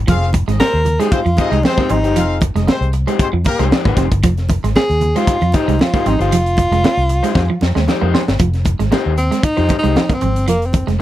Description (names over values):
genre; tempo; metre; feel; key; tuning
funk; 115 BPM; 4/4; straight; F minor; A4 = 440 Hz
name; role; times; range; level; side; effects
vintage muted fingered electric bass; bass; 0.0-11.0 s; F1 to F2; -17 LUFS; equal; none
clear horn section; second line; 0.1-3.7 s; Ab3 to F5; -22 LUFS; left 4 dB; none
clean electric guitar; riff; 0.1-10.9 s; F3 to C4; -21 LUFS; right 6 dB; none
crisp fusion drum kit; drums; 0.1-11.0 s; hi-hat, kick drum, snare drum; -18 LUFS; equal; none
congas; percussion; 0.1-10.9 s; none; -26 LUFS; right 5 dB; none
warm tenor saxophone; melody; 0.6-10.9 s; Bb3 to Bb4; -18 LUFS; equal; none
electric guitar through a small old amp; accompaniment; 1.0-11.0 s; Ab3 to D5; -21 LUFS; left 7 dB; none
room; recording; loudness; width
little or no reverb; none; -13 LUFS; side -14 dB against mid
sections
0.0-8.4 A section; 8.4-11.0 B section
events
drum fill 7.4-8.4; tenor saxophone solo 8.4-11.0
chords
0.0 Fm9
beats
| 0.08 0.60 1.12 1.64 | 2.16 2.68 3.20 3.72 | 4.24 4.76 5.28 5.80 | 6.32 6.84 7.36 7.88 | 8.40 8.92 9.44 9.96 | 10.48 11.00